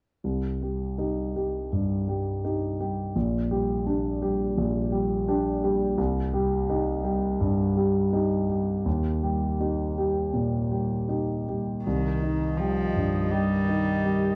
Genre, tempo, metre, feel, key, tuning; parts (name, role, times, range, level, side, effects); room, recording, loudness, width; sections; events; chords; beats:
neoclassical piano and strings; 83 BPM; 4/4; rubato; C minor; A4 = 440 Hz
warm concert grand piano; accompaniment; 0.2-14.4 s; Bb1 to G4; -27 LUFS; equal
clear cello; second line; 11.8-14.4 s; Eb3 to G3; -30 LUFS; equal
warbly tape-like pad; sustained chords; 12.9-14.4 s; Eb3 to Eb5; -36 LUFS; equal; chorus, built-in reverb
light reverb; worn, warbling old tape, cassette tape, warbly pitch drift; -26 LUFS; mono
0.2-11.9 A section; 11.9-14.4 B section
0.2 Cm; 3.1 Gm/Bb; 6.0 Cm; 8.9 Eb; 11.9 Cm
| 0.23 0.98 1.72 2.44 | 3.15 3.86 4.58 5.28 | 5.98 6.69 7.41 8.13 | 8.86 9.59 10.33 11.08 | 11.85 12.58 13.31 14.04